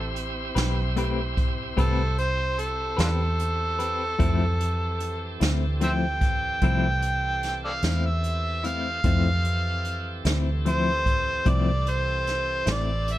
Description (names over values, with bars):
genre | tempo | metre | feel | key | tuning
slow blues | 50 BPM (dotted quarters) | 12/8 | straight | unclear | A4 = 439 Hz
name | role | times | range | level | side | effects
overdriven harmonica | melody | 0.0-13.2 s | D4 to G5 | -27 LUFS | equal | none
bright tonewheel organ | sustained chords | 0.0-13.2 s | E3 to C5 | -35 LUFS | right 2 dB | slow rotary speaker, overdrive
vintage muted fingered electric bass | bass | 0.0-13.2 s | A1 to F2 | -26 LUFS | equal | none
jazz brush drum kit | drums | 0.2-13.2 s | hi-hat, kick drum, snare drum | -27 LUFS | equal | none
semi-hollow electric guitar | accompaniment | 0.6-12.9 s | F3 to B4 | -28 LUFS | left 4 dB | tremolo
room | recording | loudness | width
light reverb | dark, warm production | -22 LUFS | side -14 dB against mid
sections
0.0-13.2 A section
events
harmonica solo 0.0-13.2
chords
0.0 Am9; 4.2 Fmaj7